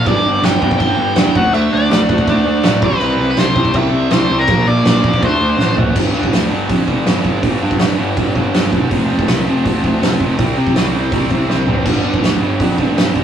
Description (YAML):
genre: punk rock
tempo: 163 BPM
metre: 4/4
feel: straight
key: unclear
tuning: A4 = 443 Hz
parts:
  - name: overdriven electric guitar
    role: melody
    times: 0.0-5.7 s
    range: Bb4 to G5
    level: -17 LUFS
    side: left 2 dB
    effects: none
  - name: distorted electric guitar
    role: riff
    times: 0.0-13.2 s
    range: F2 to D4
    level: -19 LUFS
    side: right 2 dB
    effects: overdrive
  - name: fuzz picked electric bass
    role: bass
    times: 0.1-13.2 s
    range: E1 to C3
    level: -17 LUFS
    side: equal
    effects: overdrive
  - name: loose indie drum kit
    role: drums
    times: 0.1-13.2 s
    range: crash cymbal, hi-hat, kick drum, snare drum, toms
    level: -17 LUFS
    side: right 1 dB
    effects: none
room: moderate small room reverb, RT60 0.5 s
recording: rough rehearsal-room recording, warm saturation, small room ambience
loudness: -12 LUFS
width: side -9 dB against mid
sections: 0.0-6.0 A section; 6.0-13.2 B section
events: drum fill 5.6-6.0, 11.5-11.9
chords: 0.1 G5; 1.4 D5; 2.8 C; 4.5 Bb; 5.2 D7; 6.0 G5; 8.9 F5; 10.4 C5; 11.9 G5